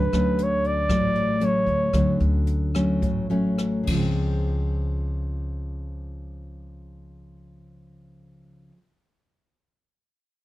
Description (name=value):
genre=bossa nova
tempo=101-119 BPM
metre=4/4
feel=straight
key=unclear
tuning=A4 = 440 Hz
part: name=warm flugelhorn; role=melody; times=0.0-2.2 s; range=Cb5 to D5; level=-24 LUFS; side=right 1 dB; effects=none
part: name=nylon-string guitar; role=accompaniment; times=0.0-8.9 s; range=A2 to C#4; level=-25 LUFS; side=left 1 dB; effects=none
part: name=upright bass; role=bass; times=0.0-8.7 s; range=A1 to D2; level=-26 LUFS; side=equal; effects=none
part: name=jazz brush drum kit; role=drums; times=0.1-4.0 s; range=crash cymbal, hi-hat, kick drum, rim click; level=-30 LUFS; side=right 1 dB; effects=none
room=light reverb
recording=dark, warm production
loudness=-21 LUFS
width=side -16 dB against mid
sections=0.0-4.2 A section; 4.2-8.9 B section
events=slowing down 0.0-4.2; flugelhorn solo 0.0-4.2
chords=0.0 Dmaj7; 3.9 Dbmaj7